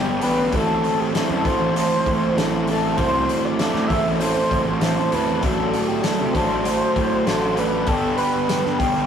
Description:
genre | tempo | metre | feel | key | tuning
indie rock | 98 BPM | 4/4 | straight | A dorian | A4 = 440 Hz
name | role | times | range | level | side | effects
octave-doubled lead | melody | 0.0-9.1 s | G4 to E5 | -23 LUFS | equal | chorus
fuzz guitar | riff | 0.0-9.1 s | G2 to A4 | -21 LUFS | equal | distortion
fuzz picked electric bass | bass | 0.0-9.1 s | E1 to C3 | -28 LUFS | equal | overdrive
loose indie drum kit | drums | 0.2-8.9 s | hi-hat, kick drum, snare drum | -27 LUFS | equal | none
room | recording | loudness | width
moderate studio reverb, RT60 0.5 s | rough rehearsal-room recording, tube saturation | -18 LUFS | side -8 dB against mid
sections
0.0-9.1 A section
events
none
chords
0.0 Gadd9; 0.5 Am; 5.4 D/A; 7.9 Gadd9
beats
| 0.53 1.14 1.75 2.37 | 2.98 3.60 4.21 4.82 | 5.44 6.05 6.66 7.27 | 7.88 8.50

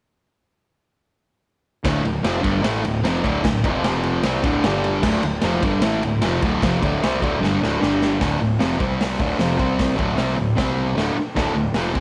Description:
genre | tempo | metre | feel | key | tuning
garage rock duo or trio | 152 BPM | 4/4 | straight | unclear | A4 = 437 Hz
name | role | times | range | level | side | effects
fuzz guitar | riff | 1.8-12.0 s | D2 to C4 | -22 LUFS | equal | distortion
fuzz fingered electric bass | bass | 1.8-12.0 s | D1 to C2 | -32 LUFS | equal | overdrive
raw garage drum kit | drums | 1.8-12.0 s | crash cymbal, hi-hat, kick drum, ride cymbal, snare drum | -26 LUFS | equal | none
room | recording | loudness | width
light reverb, small room reverb | none | -21 LUFS | mono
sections
1.8-8.2 A section; 8.2-12.0 B section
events
drum fill 7.4-8.2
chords
1.8 D5; 3.6 F5; 4.2 D5; 4.6 G5; 5.0 D5; 7.8 G5; 8.2 D5; 8.8 C5; 9.2 D5; 9.6 C5; 10.0 D5; 10.6 C5; 11.0 D5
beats
| 1.84 2.24 2.64 3.04 | 3.44 3.83 4.23 4.63 | 5.03 5.42 5.82 6.22 | 6.61 7.01 7.41 7.80 | 8.20 8.59 8.99 9.38 | 9.78 10.18 10.57 10.97 | 11.36 11.76

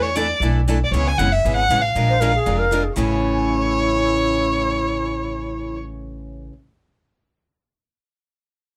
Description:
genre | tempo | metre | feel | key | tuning
acoustic string swing (jazz manouche) | 234 BPM | 4/4 | swing 56% on 8ths | A major | A4 = 440 Hz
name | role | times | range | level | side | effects
warm violin | melody | 0.0-5.8 s | C#5 to G#5 | -24 LUFS | equal | none
picked steel-string acoustic guitar | accompaniment | 0.0-6.5 s | A2 to Bb4 | -29 LUFS | equal | none
picked steel-string acoustic guitar | accompaniment | 0.0-6.5 s | A2 to Bb4 | -33 LUFS | equal | none
upright bass | bass | 0.0-6.5 s | F1 to E2 | -25 LUFS | equal | none
bansuri | second line | 2.1-5.8 s | E4 to C5 | -26 LUFS | equal | none
room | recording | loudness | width
light reverb | none | -19 LUFS | mono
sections
0.0-3.0 A section; 3.0-5.0 B section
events
none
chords
0.0 E7sus4; 0.9 C#m7; 1.9 Bb7; 3.0 Amaj7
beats
0.15 0.41 0.67 | 0.92 1.18 1.44 1.69 | 1.95 2.20 2.46 2.72 | 2.97 3.23 3.49 3.74 | 4.00 4.26 4.51 4.77

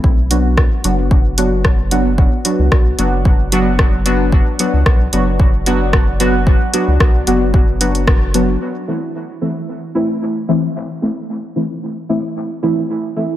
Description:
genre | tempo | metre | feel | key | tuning
dub techno | 112 BPM | 4/4 | straight | A dorian | A4 = 440 Hz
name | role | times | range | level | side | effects
round analog bass | bass | 0.0-8.6 s | F#1 to C#2 | -17 LUFS | equal | sidechain pumping
electronic kick drum | drums | 0.0-8.2 s | none | -13 LUFS | equal | none
deep mellow chord stab | stabs | 0.3-13.4 s | E3 to F#4 | -17 LUFS | equal | chorus, phaser, sidechain pumping, dub echo
punchy analog drum machine | drums | 0.3-8.5 s | hi-hat, rim click | -19 LUFS | equal | low-pass filter on hats, low-pass filter on snare
room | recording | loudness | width
light reverb | none | -13 LUFS | side -13 dB against mid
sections
0.0-8.6 A section; 8.6-13.4 B section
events
band accent 8.1; filter sweep on synth stab 8.6-13.4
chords
0.0 Bm; 8.6 Am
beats
| 0.04 0.57 1.11 1.65 | 2.18 2.72 3.25 3.79 | 4.32 4.86 5.40 5.93 | 6.47 7.00 7.54 8.07 | 8.61 9.15 9.68 10.22 | 10.75 11.29 11.82 12.36 | 12.90

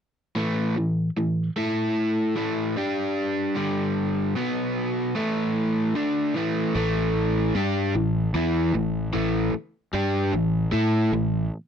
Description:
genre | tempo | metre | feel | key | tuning
rock | 75 BPM | 4/4 | straight | unclear | A4 = 440 Hz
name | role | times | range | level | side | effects
overdriven electric guitar | riff | 0.4-11.4 s | G2 to A4 | -23 LUFS | equal | none
fuzz fingered electric bass | bass | 6.8-11.5 s | A1 to A2 | -26 LUFS | equal | overdrive
room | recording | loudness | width
light reverb | dry, close 1970s-style studio recording | -22 LUFS | side -8 dB against mid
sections
0.4-6.8 A section; 6.8-11.7 B section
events
none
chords
0.4 A5; 2.8 G5; 4.4 B5; 5.2 A5; 6.0 Asus4; 6.8 A5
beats
| 0.37 1.17 1.97 2.77 | 3.56 4.36 5.16 5.96 | 6.75 7.55 8.34 9.14 | 9.93 10.73

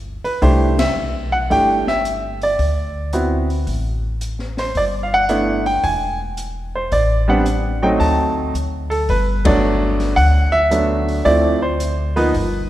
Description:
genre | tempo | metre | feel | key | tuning
jazz piano trio | 111 BPM | 4/4 | swing 68% on 8ths | unclear | A4 = 440 Hz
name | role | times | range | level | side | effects
upright bass | bass | 0.0-12.7 s | E1 to D2 | -20 LUFS | equal | none
clear baby grand piano | melody | 0.2-12.7 s | F3 to A5 | -17 LUFS | right 1 dB | none
open jazz drum kit | drums | 0.2-12.5 s | hi-hat, kick drum, ride cymbal, snare drum | -26 LUFS | left 2 dB | none
room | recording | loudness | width
moderate concert hall reverb, RT60 1.8 s | recorded in a church or concert hall | -15 LUFS | side -14 dB against mid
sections
0.0-12.7 A section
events
band accent 0.7, 9.4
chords
0.4 C69; 2.6 D7(no3); 4.8 G69; 5.8 E; 6.9 Amadd11; 8.0 D7b9; 9.1 Gmaj9; 11.3 Dm7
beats
| 0.42 0.96 1.51 2.05 | 2.59 3.13 3.67 4.21 | 4.76 5.30 5.84 6.38 | 6.92 7.46 8.00 8.55 | 9.09 9.63 10.17 10.71 | 11.25 11.80 12.34

